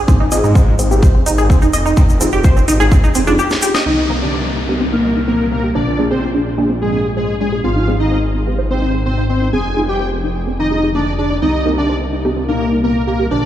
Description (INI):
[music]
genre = melodic techno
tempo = 127 BPM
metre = 4/4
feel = straight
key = C minor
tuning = A4 = 439 Hz
[part]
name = filtered dub chord stab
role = stabs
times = 0.0-13.3 s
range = Bb3 to Bb4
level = -23 LUFS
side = equal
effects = phaser, ensemble chorus, sidechain pumping, ping-pong delay
[part]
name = tight sequenced synth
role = arpeggios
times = 0.1-13.5 s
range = Bb3 to Eb5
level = -20 LUFS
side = equal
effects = chorus, phaser, sidechain pumping, ping-pong delay
[part]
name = swelling detuned saw bass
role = bass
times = 0.1-13.5 s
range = F1 to Ab2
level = -18 LUFS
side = equal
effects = sidechain pumping
[part]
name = electronic kick drum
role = drums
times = 0.1-3.0 s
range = none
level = -10 LUFS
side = equal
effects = none
[part]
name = egg shaker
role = percussion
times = 0.1-3.8 s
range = none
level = -27 LUFS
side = left 4 dB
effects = none
[part]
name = house drum kit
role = drums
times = 0.3-3.8 s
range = hi-hat, snare drum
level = -23 LUFS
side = right 1 dB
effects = sidechain pumping on hats, low-pass filter on hats, low-pass filter on snare, low-pass filter on room
[part]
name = wide unison lead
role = melody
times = 3.9-13.5 s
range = Ab3 to Ab4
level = -18 LUFS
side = equal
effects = cassette tape, sidechain pumping, dub echo
[part]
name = big bright polysynth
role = second line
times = 3.9-13.5 s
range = Ab4 to Ab5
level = -25 LUFS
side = equal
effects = ensemble chorus, sidechain pumping, ping-pong delay
[part]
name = downlifter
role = sound effects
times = 3.9-7.6 s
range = none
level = -26 LUFS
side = left 1 dB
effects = none
[sound]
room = light reverb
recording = played on a big sound system in a bare room, stone room reverb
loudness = -13 LUFS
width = side -12 dB against mid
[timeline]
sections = 0.0-3.9 A section; 3.9-13.5 B section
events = filter sweep on synth arpeggio sound 0.0-3.9; break 3.4-3.9; drum fill 3.5-3.9; band accent 3.7; filter sweep on analog synth lead 3.9-13.5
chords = 0.1 Ab6; 2.0 Fm7; 3.9 Cm7; 5.8 Bb7; 7.6 Ab6; 9.5 Fm7; 11.4 Cm7